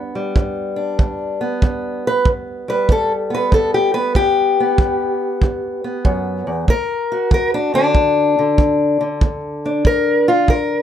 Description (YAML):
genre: acoustic country blues, solo or duo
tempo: 95 BPM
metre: 4/4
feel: swing 66% on 8ths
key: G major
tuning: A4 = 440 Hz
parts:
  - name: fingerpicked old ladder-braced acoustic guitar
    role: melody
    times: 0.0-10.8 s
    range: D2 to B4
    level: -16 LUFS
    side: left 1 dB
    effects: none
  - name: kick drum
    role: drums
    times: 0.4-10.7 s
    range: none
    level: -16 LUFS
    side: right 1 dB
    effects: none
room: light reverb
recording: dark, warm production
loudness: -15 LUFS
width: side -10 dB against mid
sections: 0.0-10.8 A section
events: steel-string acoustic guitar solo 0.0-10.8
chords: 0.0 G; 6.7 D